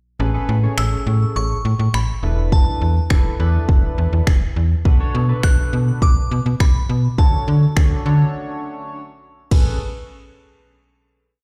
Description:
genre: dance-pop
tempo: 103 BPM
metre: 4/4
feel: straight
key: A major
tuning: A4 = 440 Hz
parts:
  - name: chorused polysynth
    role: accompaniment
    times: 0.2-9.8 s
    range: C#4 to C#5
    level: -31 LUFS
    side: equal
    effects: phaser, sidechain pumping
  - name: slap-like FM bass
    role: bass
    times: 0.2-9.8 s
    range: E1 to D3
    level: -20 LUFS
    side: equal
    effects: sidechain pumping
  - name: glassy synth bell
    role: melody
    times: 0.8-8.3 s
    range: A5 to F#6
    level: -31 LUFS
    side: equal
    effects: chorus, delay
  - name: pop drum kit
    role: drums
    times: 0.8-9.7 s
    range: crash cymbal, finger snaps, kick drum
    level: -18 LUFS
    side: equal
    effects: none
room: little or no reverb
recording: played on a big sound system in a bare room, large studio reverb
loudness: -18 LUFS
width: mono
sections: 0.2-9.5 verse; 9.5-11.4 final chord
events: break 8.3-9.5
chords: 0.2 Amaj9; 2.2 E7sus4; 4.9 Bm7; 7.2 Dmaj7; 9.5 Amaj9

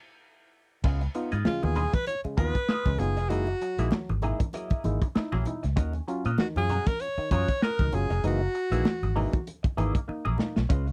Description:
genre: funk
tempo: 97 BPM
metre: 4/4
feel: swing 56% on 16ths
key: unclear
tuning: A4 = 438 Hz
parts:
  - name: semi-hollow electric guitar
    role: accompaniment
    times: 0.8-10.9 s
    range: A#3 to E5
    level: -40 LUFS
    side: equal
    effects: wah
  - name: mellow clav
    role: stabs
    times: 0.8-10.9 s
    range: C#3 to E#4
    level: -36 LUFS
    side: equal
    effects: none
  - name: vintage muted fingered electric bass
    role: bass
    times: 0.8-10.9 s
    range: E#1 to A#2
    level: -30 LUFS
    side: equal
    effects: none
  - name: crunchy breakbeat drum kit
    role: drums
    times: 0.8-10.9 s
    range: crash cymbal, hi-hat, kick drum, snare drum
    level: -29 LUFS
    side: equal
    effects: vintage 12-bit sampler grit
  - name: bright alto saxophone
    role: melody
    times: 1.5-9.4 s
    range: E#4 to C#5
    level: -32 LUFS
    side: equal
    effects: none
  - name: congas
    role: percussion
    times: 1.5-10.5 s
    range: none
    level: -40 LUFS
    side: equal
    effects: none
room: little or no reverb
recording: dry, close 1970s-style studio recording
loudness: -28 LUFS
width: mono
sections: 0.8-10.9 A section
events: band accent 0.0-0.8; silent gap 0.2-0.8; drum fill 10.1-10.7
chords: 0.0 N.C.; 0.8 C#9; 3.3 F#13; 5.8 D#m7; 8.2 F#13

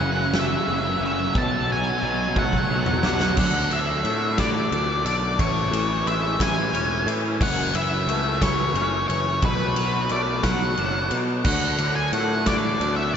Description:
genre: post-rock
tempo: 59 BPM (dotted quarters)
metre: 6/8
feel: straight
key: unclear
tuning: A4 = 438 Hz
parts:
  - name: octave-fuzz lead guitar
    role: melody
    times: 0.0-13.2 s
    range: B4 to A5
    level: -25 LUFS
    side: left 1 dB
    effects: distortion, diffuse ambient delay
  - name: twangy electric guitar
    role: arpeggios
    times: 0.0-13.2 s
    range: F#2 to D4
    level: -29 LUFS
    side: left 2 dB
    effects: ensemble chorus, diffuse ambient delay
  - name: thick fuzz guitar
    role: riff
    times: 0.0-3.4 s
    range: F#2 to F#3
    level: -29 LUFS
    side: right 2 dB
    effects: distortion
  - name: fuzz picked electric bass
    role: bass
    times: 0.0-13.2 s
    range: E1 to B2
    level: -27 LUFS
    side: equal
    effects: overdrive
  - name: huge arena drum kit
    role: drums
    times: 0.3-13.0 s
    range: crash cymbal, kick drum, ride cymbal, snare drum, toms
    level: -26 LUFS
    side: equal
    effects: none
room: wet huge ambient reverb, RT60 9.2 s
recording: dreamy mix soaked in reverb, nothing above 7.7 kHz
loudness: -20 LUFS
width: side -8 dB against mid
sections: 0.0-3.4 A section; 3.4-13.2 B section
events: build-up 0.0-3.4; drum fill 2.4-3.4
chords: 0.0 F#m7; 1.4 Bm7; 3.4 D5; 5.4 Amaj7; 7.4 F#m7; 9.4 Bm7; 11.5 D5

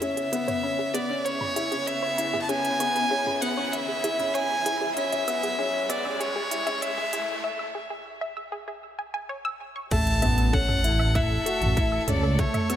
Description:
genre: piano and strings electronica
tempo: 97 BPM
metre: 4/4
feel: straight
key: unclear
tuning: A4 = 440 Hz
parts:
  - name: rich violin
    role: melody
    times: 0.0-12.8 s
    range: C#5 to A5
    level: -27 LUFS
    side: equal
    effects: tape echo
  - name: rich chamber string section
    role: sustained chords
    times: 0.0-12.8 s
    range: C#3 to A4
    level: -34 LUFS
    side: right 1 dB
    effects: sidechain pumping
  - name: wide unison pluck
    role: arpeggios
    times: 0.0-12.8 s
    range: G#4 to E6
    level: -34 LUFS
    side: equal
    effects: sidechain pumping, tape echo
  - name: warm upright piano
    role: riff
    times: 0.0-12.8 s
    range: A3 to F#4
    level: -30 LUFS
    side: left 2 dB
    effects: none
  - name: organic electronic drum kit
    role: drums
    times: 0.0-12.8 s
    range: crash cymbal, hi-hat, toms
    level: -33 LUFS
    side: right 1 dB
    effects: overdrive
  - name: riser and sub drop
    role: sound effects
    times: 3.1-12.4 s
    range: none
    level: -37 LUFS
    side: right 1 dB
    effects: none
  - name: dark detuned saw bass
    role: bass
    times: 9.9-12.5 s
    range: A1 to C#2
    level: -25 LUFS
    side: equal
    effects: sidechain pumping
  - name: electronic kick drum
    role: drums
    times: 9.9-12.5 s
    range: none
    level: -26 LUFS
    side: equal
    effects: overdrive
room: moderate lush hall reverb, RT60 3.0 s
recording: high-pass filter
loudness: -23 LUFS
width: side -10 dB against mid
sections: 0.0-9.9 A section; 9.9-12.8 B section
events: build-up 0.0-9.9; filter sweep on synth arpeggio sound 0.0-9.9; riser 3.1-7.4; break 7.4-9.9; drop 9.9-12.8; impact 9.9-12.4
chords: 0.0 C#m; 9.9 A

